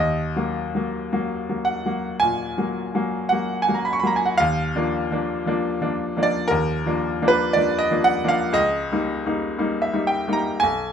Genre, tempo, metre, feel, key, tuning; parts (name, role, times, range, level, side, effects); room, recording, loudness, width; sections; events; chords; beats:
classical, romantic nocturne for solo piano; 50-59 BPM; 4/4; rubato; Eb minor; A4 = 440 Hz
clear upright piano; solo; 0.0-10.9 s; Cb2 to Db6; -20 LUFS; equal
light reverb; -20 LUFS; side -8 dB against mid
0.0-10.9 A section
0.0 Ebm; 4.4 Bb/Eb; 8.6 Eb7/Db
1.12 2.22 3.30 | 4.37 5.43 6.48 7.55 | 8.58 9.60 10.64